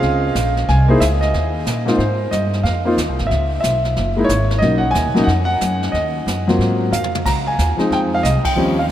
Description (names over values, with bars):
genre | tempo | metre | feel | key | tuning
jazz piano trio | 183 BPM | 4/4 | swing 64% on 8ths | Ab major | A4 = 441 Hz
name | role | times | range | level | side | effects
warm concert grand piano | melody | 0.0-8.8 s | Ab2 to Bb5 | -17 LUFS | equal | none
upright bass | bass | 0.0-8.9 s | Gb1 to Bb2 | -19 LUFS | equal | none
jazz brush drum kit | drums | 0.0-8.9 s | brushed snare drum, crash cymbal, hi-hat, kick drum, ride cymbal, snare drum, toms | -26 LUFS | right 1 dB | none
room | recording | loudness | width
wet cathedral reverb, RT60 6.8 s | in a vast, echoing space | -15 LUFS | side -11 dB against mid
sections
0.0-2.0 A section; 2.0-8.9 B section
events
drum fill 6.9-7.3; band accent 8.4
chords
0.0 Bbm9; 0.7 Caug; 1.3 Eb5; 2.0 Ab6; 3.3 Dbm7; 4.0 Gb7sus2; 4.6 Bmaj7; 5.9 Ebm; 6.6 Ab13; 7.3 Dbmaj9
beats
0.03 0.35 | 0.68 1.01 1.34 1.67 | 2.00 2.32 2.65 2.98 | 3.31 3.64 3.97 4.29 | 4.62 4.95 5.28 5.61 | 5.94 6.27 6.59 6.92 | 7.25 7.58 7.91 8.24 | 8.56 8.89